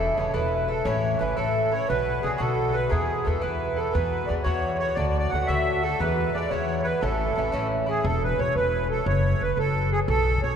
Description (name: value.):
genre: celtic folk, Celtic jig.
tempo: 117 BPM (dotted quarters).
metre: 6/8.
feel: straight.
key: unclear.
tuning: A4 = 440 Hz.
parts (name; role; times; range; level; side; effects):
accordion; melody; 0.0-10.6 s; G#4 to F#5; -26 LUFS; right 2 dB; light tremolo tuning.
Irish bouzouki; accompaniment; 0.0-8.1 s; G#2 to F#4; -28 LUFS; left 1 dB; none.
upright bass; bass; 0.0-10.6 s; E1 to E2; -27 LUFS; left 1 dB; none.
room: wet cathedral reverb, RT60 5.4 s.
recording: recorded in a church or concert hall.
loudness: -22 LUFS.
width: side -7 dB against mid.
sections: 0.0-8.0 A section; 8.0-10.6 A section.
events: none.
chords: 0.0 Esus4; 0.9 A; 1.9 Bm; 2.9 E; 3.9 Eadd9; 5.0 D; 6.0 E; 7.0 A; 8.0 E5; 9.1 F#m.